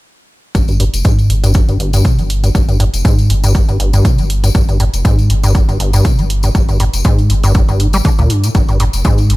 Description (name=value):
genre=acid house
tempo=120 BPM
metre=4/4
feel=swing 55% on 16ths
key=unclear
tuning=A4 = 440 Hz
part: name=acid bass, square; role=riff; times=0.5-9.3 s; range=G1 to G3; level=-14 LUFS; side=equal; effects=overdrive, sidechain pumping, ping-pong delay
part: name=warm sub bass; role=bass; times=0.5-9.4 s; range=F1 to D2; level=-15 LUFS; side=equal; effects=sidechain pumping
part: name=electronic kick drum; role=drums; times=0.5-9.2 s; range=none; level=-13 LUFS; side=equal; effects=overdrive, small room ambience
part: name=electronic hi-hat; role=drums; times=0.6-9.4 s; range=none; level=-26 LUFS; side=right 2 dB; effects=overdrive, small room ambience
part: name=tambourine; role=percussion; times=0.6-9.3 s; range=none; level=-26 LUFS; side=left 7 dB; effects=none
room=little or no reverb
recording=none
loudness=-10 LUFS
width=side -20 dB against mid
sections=0.6-9.4 A section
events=filter sweep on acid bass 0.6-9.4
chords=none